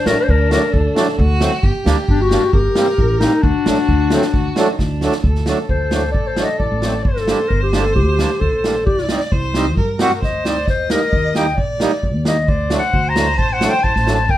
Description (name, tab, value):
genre	klezmer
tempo	133 BPM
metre	4/4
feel	straight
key	D phrygian dominant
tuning	A4 = 440 Hz
part	mellow clarinet	melody	0.0-14.4 s	D4 to Bb5	-18 LUFS	left 3 dB	none
part	rich violin	second line	0.0-14.4 s	D4 to Eb5	-25 LUFS	right 2 dB	none
part	accordion	accompaniment	0.1-14.2 s	F#3 to F#4	-20 LUFS	right 2 dB	none
part	upright bass	bass	0.1-14.4 s	G1 to G2	-20 LUFS	equal	none
part	street-band drum kit	drums	0.1-14.4 s	kick drum, snare drum	-20 LUFS	equal	none
room	light reverb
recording	dark, warm production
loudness	-14 LUFS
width	side -13 dB against mid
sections	0.0-5.2 A section; 5.2-14.4 B section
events	drum fill 4.8-5.2; clarinet solo 5.2-14.4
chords	0.0 D; 1.6 Gm; 3.4 D; 7.0 Gm; 8.9 Cm; 10.7 Eb; 12.5 D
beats	0.28 0.73 1.19 | 1.64 2.08 2.54 2.99 | 3.44 3.89 4.34 4.79 | 5.24 5.69 6.15 6.60 | 7.05 7.50 7.96 8.41 | 8.86 9.31 9.77 10.22 | 10.67 11.12 11.57 12.03 | 12.48 12.93 13.38 13.84 | 14.29